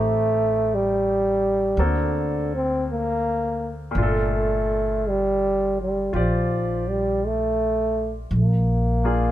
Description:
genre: jazz ballad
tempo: 55 BPM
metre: 4/4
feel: swing 68% on 8ths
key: G minor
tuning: A4 = 440 Hz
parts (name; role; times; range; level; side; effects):
- breathy trombone; melody; 0.0-9.3 s; D3 to C4; -22 LUFS; equal; none
- clear concert grand piano; accompaniment; 0.0-9.3 s; Bb2 to D5; -30 LUFS; equal; none
- upright bass; bass; 0.0-9.3 s; G1 to D2; -25 LUFS; equal; none
room: light reverb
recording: none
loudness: -20 LUFS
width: side -13 dB against mid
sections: 0.0-9.3 A section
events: none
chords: 0.0 Am7b5; 1.8 D7b13; 3.9 Gm9; 8.3 Bb7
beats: 0.68 1.76 2.85 | 3.94 5.03 6.12 7.21 | 8.31

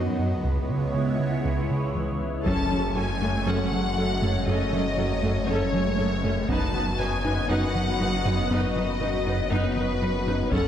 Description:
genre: cinematic, hybrid orchestral and electronic film score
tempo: 119 BPM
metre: 4/4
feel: straight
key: F# dorian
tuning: A4 = 440 Hz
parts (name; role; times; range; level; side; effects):
- phased analog pad; sustained chords; 0.0-10.7 s; F#3 to D#5; -30 LUFS; equal; phaser, chorus
- tight sequenced synth; arpeggios; 0.0-10.7 s; C#3 to B4; -34 LUFS; left 1 dB; chorus, tape echo
- smooth gliding synth bass; riff; 0.0-10.7 s; C#2 to F#3; -28 LUFS; right 1 dB; none
- rich symphonic cello section; bass; 0.0-10.6 s; C#2 to F#2; -33 LUFS; right 1 dB; none
- rich symphonic violin section; melody; 2.5-10.7 s; B4 to A5; -30 LUFS; left 3 dB; none
- rich symphonic viola section; accompaniment; 2.5-10.7 s; C#4 to B4; -31 LUFS; equal; none
- wide detuned saw bass; bass; 2.5-10.7 s; F#1; -30 LUFS; left 1 dB; chorus
- taiko ensemble; drums; 2.5-3.4, 6.5-7.5, 10.5-10.7 s; none; -31 LUFS; left 1 dB; none
room: wet scoring stage reverb, RT60 1.6 s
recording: heard from further back in the room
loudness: -23 LUFS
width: side -10 dB against mid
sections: 0.0-2.5 A section; 2.5-10.7 B section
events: build-up 0.0-2.5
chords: 0.4 C#m7; 2.5 F#madd9; 6.5 B/F#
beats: | 0.44 0.94 1.45 1.95 | 2.46 2.96 3.46 3.97 | 4.47 4.98 5.48 5.99 | 6.49 7.00 7.50 8.00 | 8.51 9.01 9.52 10.02 | 10.52

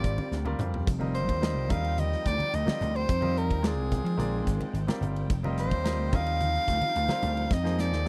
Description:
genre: electric jazz fusion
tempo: 108 BPM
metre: 4/4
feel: straight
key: F dorian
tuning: A4 = 440 Hz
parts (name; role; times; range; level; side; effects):
- bright soprano saxophone; melody; 0.0-8.1 s; Ab4 to F5; -33 LUFS; equal; none
- clear baby grand piano; accompaniment; 0.0-8.1 s; F3 to Eb5; -38 LUFS; equal; none
- dark studio string section; sustained chords; 0.0-8.1 s; D3 to G5; -43 LUFS; equal; none
- vintage slap bass; bass; 0.0-8.1 s; F1 to F3; -32 LUFS; equal; none
- modern studio drum kit; drums; 0.0-8.1 s; hi-hat, kick drum, ride cymbal, snare drum, splash cymbal, toms; -33 LUFS; equal; none
- congas; percussion; 0.2-7.4 s; none; -38 LUFS; equal; none
room: little or no reverb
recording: dry, close 1970s-style studio recording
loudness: -28 LUFS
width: mono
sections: 0.0-8.1 A section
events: drum fill 0.3-0.9, 7.5-8.1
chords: 0.0 Bb13; 0.9 Fsus2; 1.7 Ebmaj9; 3.1 Fm9; 4.2 Bb13; 5.3 Fsus2; 6.1 Ebmaj9; 7.5 Fm9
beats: 0.32 | 0.87 1.42 1.98 2.53 | 3.08 3.64 4.19 4.74 | 5.30 5.85 6.40 6.96 | 7.51 8.06

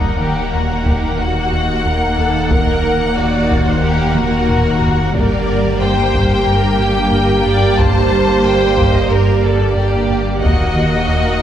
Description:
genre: cinematic, hybrid orchestral and electronic film score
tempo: 91 BPM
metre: 4/4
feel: straight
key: G harmonic minor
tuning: A4 = 440 Hz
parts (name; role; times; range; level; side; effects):
- warm symphonic violin section; melody; 0.0-11.4 s; Bb4 to A5; -21 LUFS; left 3 dB; none
- warm symphonic violin section; second line; 0.0-11.4 s; Eb4 to D5; -22 LUFS; left 1 dB; none
- rich symphonic viola section; accompaniment; 0.0-11.4 s; Bb3 to Gb5; -21 LUFS; right 2 dB; none
- ethereal airy pad; sustained chords; 0.0-11.4 s; D3 to Gb5; -24 LUFS; right 1 dB; none
- warm French horn section; sustained chords; 0.0-11.4 s; Bb3 to G4; -21 LUFS; right 2 dB; none
- round analog bass; riff; 0.0-11.3 s; Eb2 to G3; -20 LUFS; equal; none
- dark symphonic cello section; bass; 0.0-11.4 s; Eb2 to G2; -21 LUFS; equal; none
- warm sub bass; bass; 0.0-11.4 s; Eb1 to G1; -25 LUFS; equal; none
- taiko ensemble; drums; 0.9-11.0 s; none; -20 LUFS; equal; none
room: wet scoring stage reverb, RT60 1.7 s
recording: heard from further back in the room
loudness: -12 LUFS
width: side -10 dB against mid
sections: 0.0-11.4 A section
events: drum fill 4.2-5.1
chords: 0.0 Ebm; 5.1 Gm; 10.4 Ebm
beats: 0.53 1.19 1.85 | 2.51 3.17 3.83 4.49 | 5.15 5.81 6.47 7.12 | 7.78 8.44 9.10 9.76 | 10.42 11.08

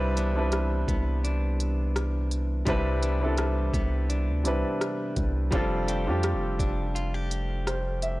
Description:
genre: contemporary R&B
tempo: 84 BPM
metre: 4/4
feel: swing 54% on 16ths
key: C major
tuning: A4 = 438 Hz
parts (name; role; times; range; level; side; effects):
- warm baby grand piano; accompaniment; 0.0-8.2 s; G3 to E5; -30 LUFS; equal; none
- direct-recorded clean electric guitar; arpeggios; 0.0-8.2 s; C3 to G4; -36 LUFS; left 2 dB; analog delay
- long sustained 808-style bass; bass; 0.0-8.2 s; F1 to F2; -27 LUFS; equal; none
- smooth R&B drum kit; drums; 0.2-8.2 s; hi-hat, kick drum, rim click; -31 LUFS; equal; none
room: digital ambience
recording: dry, gritty hardware recording, transformer saturation, cassette tape, faint mains hum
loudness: -25 LUFS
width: side -19 dB against mid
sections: 0.0-8.2 A section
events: none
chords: 0.0 Cmaj9; 5.5 F69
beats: 0.52 1.24 1.95 | 2.67 3.38 4.10 4.81 | 5.52 6.24 6.95 7.67

